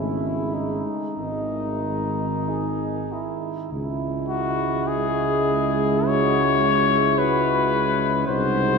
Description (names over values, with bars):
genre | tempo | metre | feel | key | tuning
classical, hymn-like piece for brass band | 45-55 BPM | 4/4 | rubato | C# minor | A4 = 440 Hz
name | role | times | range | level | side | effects
warm cornet | melody | 0.0-8.8 s | D#4 to C#5 | -24 LUFS | left 7 dB | none
mellow flugelhorn | second line | 0.0-8.8 s | D#4 to G#4 | -28 LUFS | right 5 dB | none
mellow euphonium | accompaniment | 0.0-8.8 s | C#3 to G#3 | -29 LUFS | right 2 dB | none
warm trombone section | accompaniment | 0.0-8.8 s | G#3 to F#4 | -32 LUFS | left 2 dB | none
mellow tuba | bass | 0.0-8.8 s | G#1 to C#2 | -26 LUFS | right 1 dB | none
room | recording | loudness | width
wet cathedral reverb, RT60 6.3 s | dark, warm production | -20 LUFS | side -4 dB against mid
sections
0.0-3.7 A section; 3.7-8.8 B section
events
none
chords
0.0 C#m/G#; 1.2 G#5; 3.7 C#m